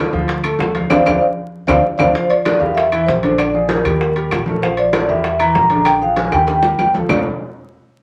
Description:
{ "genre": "Afro-Cuban jazz", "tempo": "194 BPM", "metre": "4/4", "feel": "straight", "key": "D minor", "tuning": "A4 = 440 Hz", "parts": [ { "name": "warm grand piano", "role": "accompaniment", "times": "0.0-7.2 s", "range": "D3 to F5", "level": "-24 LUFS", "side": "equal", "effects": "none" }, { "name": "upright bass", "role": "bass", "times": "0.0-7.2 s", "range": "Bb1 to E2", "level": "-26 LUFS", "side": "equal", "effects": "none" }, { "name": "bongos", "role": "percussion", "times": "0.1-7.2 s", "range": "none", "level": "-28 LUFS", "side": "equal", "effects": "none" }, { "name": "congas", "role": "percussion", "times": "0.1-7.2 s", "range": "none", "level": "-25 LUFS", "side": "equal", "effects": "none" }, { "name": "timbales", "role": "percussion", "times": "0.3-7.2 s", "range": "none", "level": "-29 LUFS", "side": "equal", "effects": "none" }, { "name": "claves", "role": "percussion", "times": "0.4-7.2 s", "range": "none", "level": "-28 LUFS", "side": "equal", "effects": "none" }, { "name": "vibraphone with soft mallets", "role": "melody", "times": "0.9-7.2 s", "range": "Bb4 to Bb5", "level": "-18 LUFS", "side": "equal", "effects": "none" } ], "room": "wet club reverb, RT60 0.7 s", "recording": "vinyl crackle", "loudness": "-16 LUFS", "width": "mono", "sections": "0.0-2.1 A section; 2.1-7.1 B section", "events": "band accent 0.9-2.1; drum fill 1.2-2.1, 6.3-7.1", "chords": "0.0 Dm7; 2.1 Bbmaj7; 2.8 Em7b5; 3.4 Bb7; 4.0 Eb; 4.6 Bbmaj7; 5.2 Em7b5; 5.9 Bb7; 6.5 Eb; 7.1 Dm7" }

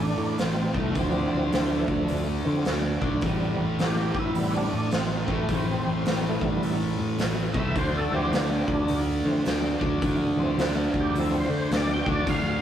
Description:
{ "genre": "blues rock power trio and southern rock", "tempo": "106 BPM", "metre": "4/4", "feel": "swing 63% on 8ths", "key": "unclear", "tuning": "A4 = 440 Hz", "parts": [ { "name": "overdriven tonewheel organ", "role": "sustained chords", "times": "0.0-12.6 s", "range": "C3 to G5", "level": "-30 LUFS", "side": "right 1 dB", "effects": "slow rotary speaker, chorus vibrato" }, { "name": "fuzz guitar", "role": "riff", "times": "0.0-12.6 s", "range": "A2 to D4", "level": "-28 LUFS", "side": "right 1 dB", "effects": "distortion" }, { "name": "picked electric bass", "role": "bass", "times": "0.0-12.6 s", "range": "A1 to D3", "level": "-28 LUFS", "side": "left 1 dB", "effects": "none" }, { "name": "raw garage drum kit", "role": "drums", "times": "0.4-12.4 s", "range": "hi-hat, kick drum, snare drum", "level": "-29 LUFS", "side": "equal", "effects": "none" } ], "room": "moderate studio reverb, RT60 0.6 s", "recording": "rough rehearsal-room recording", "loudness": "-23 LUFS", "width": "side -10 dB against mid", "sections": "0.0-12.6 A section", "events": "tonewheel organ solo 0.0-12.6", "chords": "0.0 Am; 1.0 Dm7; 3.2 Am7; 7.8 Dm7" }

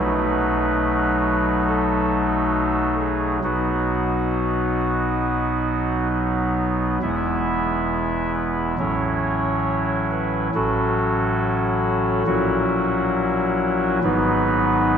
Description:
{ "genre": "classical, chorale-style piece for pipe organ", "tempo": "68 BPM", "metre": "4/4", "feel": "rubato", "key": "unclear", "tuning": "A4 = 441 Hz", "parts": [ { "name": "chamber organ, soft reed", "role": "solo", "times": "0.0-15.0 s", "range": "E1 to F#5", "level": "-19 LUFS", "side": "equal", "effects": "none" } ], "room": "wet church reverb, RT60 2.9 s", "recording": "none", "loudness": "-19 LUFS", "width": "side -8 dB against mid", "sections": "0.0-15.0 A section", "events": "none", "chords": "0.0 B7; 3.4 B; 7.0 E; 8.8 A6; 10.5 F#m/A; 12.3 F#7/A#; 14.0 G#m7" }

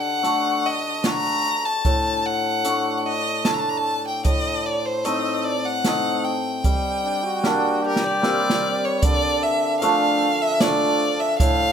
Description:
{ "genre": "klezmer", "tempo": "75 BPM", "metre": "3/4", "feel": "straight", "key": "G harmonic minor", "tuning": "A4 = 440 Hz", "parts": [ { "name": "clear violin", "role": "melody", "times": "0.0-11.7 s", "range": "Bb4 to Bb5", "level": "-23 LUFS", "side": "left 1 dB", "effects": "plate reverb" }, { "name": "hammered dulcimer", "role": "accompaniment", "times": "0.0-11.7 s", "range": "A2 to A4", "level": "-23 LUFS", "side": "equal", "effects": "none" }, { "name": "open jazz drum kit", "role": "drums", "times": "0.2-11.6 s", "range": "hi-hat, kick drum, snare drum", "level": "-22 LUFS", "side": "right 2 dB", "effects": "none" }, { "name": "bright trombone", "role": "second line", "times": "7.0-9.0 s", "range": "D4 to G4", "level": "-25 LUFS", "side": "left 1 dB", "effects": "none" } ], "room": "light reverb", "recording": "close, detailed microphones", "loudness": "-19 LUFS", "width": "side -8 dB against mid", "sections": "0.0-9.0 A section; 9.0-11.7 B section", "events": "drum fill 7.4-9.0", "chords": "0.0 D; 4.2 Adim; 6.6 Gm; 9.0 Dm" }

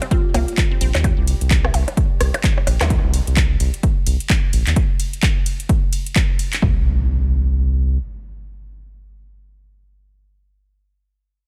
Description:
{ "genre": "minimal techno", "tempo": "129 BPM", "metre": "4/4", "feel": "swing 59% on 16ths", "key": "C minor", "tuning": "A4 = 440 Hz", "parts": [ { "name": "resonant blip pluck", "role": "riff", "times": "0.0-0.9 s", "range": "Bb3 to C4", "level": "-33 LUFS", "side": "equal", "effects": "phaser, sidechain pumping, delay" }, { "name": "house drum kit", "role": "drums", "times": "0.0-6.6 s", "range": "handclaps, hi-hat, ride cymbal", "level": "-27 LUFS", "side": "equal", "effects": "overdrive" }, { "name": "electronic percussion blips and rim click", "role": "percussion", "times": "0.0-2.9 s", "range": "none", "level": "-28 LUFS", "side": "equal", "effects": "delay" }, { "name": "pulsing gated texture", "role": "texture", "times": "0.0-2.9 s", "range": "G3 to G4", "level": "-42 LUFS", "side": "equal", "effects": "none" }, { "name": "marimba with medium mallets", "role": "melody", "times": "0.1-0.5 s", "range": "F4", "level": "-33 LUFS", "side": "equal", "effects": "delay" }, { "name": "electronic kick drum", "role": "drums", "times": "0.1-6.7 s", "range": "none", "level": "-21 LUFS", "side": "equal", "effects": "overdrive" }, { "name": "round analog bass", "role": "bass", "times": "0.3-8.0 s", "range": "Bb1 to Eb2", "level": "-20 LUFS", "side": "equal", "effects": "sidechain pumping" }, { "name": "zap and impact", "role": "sound effects", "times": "2.8-2.9, 6.6-10.8 s", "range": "none", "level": "-30 LUFS", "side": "equal", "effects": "none" } ], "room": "digital ambience", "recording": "none", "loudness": "-18 LUFS", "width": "mono", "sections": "0.0-6.6 A section; 6.6-10.3 B section", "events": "drop 0.0-6.6", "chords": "0.0 C5; 6.6 N.C." }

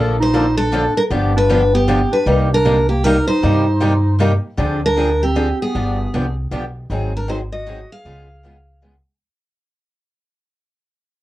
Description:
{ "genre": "acoustic string swing (jazz manouche)", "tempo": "155 BPM", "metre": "3/4", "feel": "swing 62% on 8ths", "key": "C minor", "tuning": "A4 = 440 Hz", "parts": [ { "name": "picked old ladder-braced acoustic guitar", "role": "accompaniment", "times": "0.0-8.9 s", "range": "C3 to A4", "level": "-22 LUFS", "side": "left 2 dB", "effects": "none" }, { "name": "picked steel-string acoustic guitar", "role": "accompaniment", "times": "0.0-9.0 s", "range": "C3 to A4", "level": "-25 LUFS", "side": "right 3 dB", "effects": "none" }, { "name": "upright bass", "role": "bass", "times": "0.0-9.0 s", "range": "G1 to G2", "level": "-19 LUFS", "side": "equal", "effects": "none" }, { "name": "picked steel-string acoustic guitar", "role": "melody", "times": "0.2-8.8 s", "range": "G4 to F5", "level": "-19 LUFS", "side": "equal", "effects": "none" }, { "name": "warm clarinet", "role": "second line", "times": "0.2-8.8 s", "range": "Bb3 to Ab4", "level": "-21 LUFS", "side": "right 2 dB", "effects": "none" } ], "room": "light reverb", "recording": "worn, warbling old tape, cassette tape, warbly pitch drift", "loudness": "-14 LUFS", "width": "side -15 dB against mid", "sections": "0.0-4.6 A section; 4.6-9.2 B section", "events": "fade-out 4.6-9.2", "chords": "0.0 Bbmaj7; 1.1 G7; 2.3 Cm7; 4.6 Dm7b5; 5.7 G7b9; 6.9 Ab7; 8.1 Db7" }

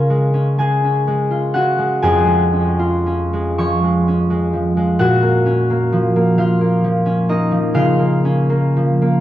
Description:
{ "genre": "classical, solo harp piece", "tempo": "37-45 BPM (dotted quarters)", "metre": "6/8", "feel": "rubato", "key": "Db major", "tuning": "A4 = 440 Hz", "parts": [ { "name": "concert harp", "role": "solo", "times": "0.0-9.2 s", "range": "F2 to Db6", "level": "-14 LUFS", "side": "equal", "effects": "none" } ], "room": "wet stone room reverb, RT60 1.3 s", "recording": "worn, warbling old tape, cassette tape, warbly pitch drift", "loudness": "-14 LUFS", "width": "side -13 dB against mid", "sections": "0.0-9.2 A section", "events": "none", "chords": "0.0 Db; 2.0 Db/F; 5.0 Bbm; 7.7 Bbm/Db" }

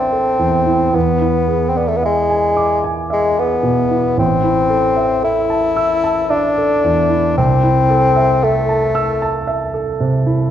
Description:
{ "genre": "classical, romantic duo for bassoon and grand piano", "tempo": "56 BPM", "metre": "3/4", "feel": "rubato", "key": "A minor", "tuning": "A4 = 440 Hz", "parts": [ { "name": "clear bassoon", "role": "melody", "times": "0.0-9.5 s", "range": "G#3 to E4", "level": "-15 LUFS", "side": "left 3 dB", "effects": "none" }, { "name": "warm grand piano", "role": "accompaniment", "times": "0.0-10.5 s", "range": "A1 to E6", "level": "-17 LUFS", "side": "right 3 dB", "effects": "none" } ], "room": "wet recital hall reverb, RT60 1.4 s", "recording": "dark, warm production", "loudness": "-13 LUFS", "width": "side -10 dB against mid", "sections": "0.0-10.5 A section", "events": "none", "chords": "0.0 Am; 0.9 E7; 4.2 Am; 7.4 Am/C" }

